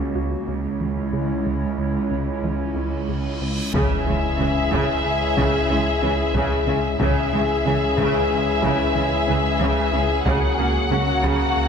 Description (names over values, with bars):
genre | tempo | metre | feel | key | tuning
cinematic, hybrid orchestral and electronic film score | 92 BPM | 5/4 | straight | C# dorian | A4 = 441 Hz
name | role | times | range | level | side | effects
hollow soft pad | sustained chords | 0.0-11.7 s | G#3 to C#5 | -28 LUFS | left 2 dB | chorus
wide unison pluck | arpeggios | 0.0-11.4 s | C#3 to F#4 | -34 LUFS | left 2 dB | none
rich symphonic cello section | bass | 0.0-11.3 s | C#2 to C#3 | -28 LUFS | right 4 dB | none
smooth gliding synth bass | riff | 0.2-11.7 s | C#2 to C#3 | -29 LUFS | right 1 dB | none
reverse cymbal and impact | sound effects | 3.1-7.0 s | none | -30 LUFS | equal | none
warm symphonic violin section | melody | 3.7-11.7 s | E5 to F#5 | -25 LUFS | left 3 dB | none
warm symphonic viola section | accompaniment | 3.7-11.5 s | C#3 to A#3 | -27 LUFS | right 2 dB | none
clear French horn section | sustained chords | 3.7-11.7 s | G#3 to G#4 | -28 LUFS | left 7 dB | none
clear trombone section | sustained chords | 3.7-11.7 s | C#3 to F#3 | -31 LUFS | right 4 dB | none
dark studio double bass section | bass | 3.7-11.3 s | C#2 | -30 LUFS | right 3 dB | none
warm sub bass | bass | 3.7-11.7 s | C#2 | -28 LUFS | left 1 dB | none
taiko ensemble | drums | 3.7-11.7 s | none | -29 LUFS | left 1 dB | none
warm studio violin section | second line | 3.8-11.7 s | F#4 to G#4 | -27 LUFS | left 2 dB | none
room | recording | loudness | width
moderate scoring stage reverb, RT60 1.8 s | none | -19 LUFS | side -6 dB against mid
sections
0.0-3.7 A section; 3.7-11.7 A section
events
reverse cymbal 3.1-3.7; impact 3.7-7.0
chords
0.5 C#m; 10.3 F#/C#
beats
| 0.48 1.13 1.78 2.44 3.09 | 3.74 4.39 5.04 5.70 6.35 | 7.00 7.65 8.31 8.96 9.61 | 10.26 10.91 11.57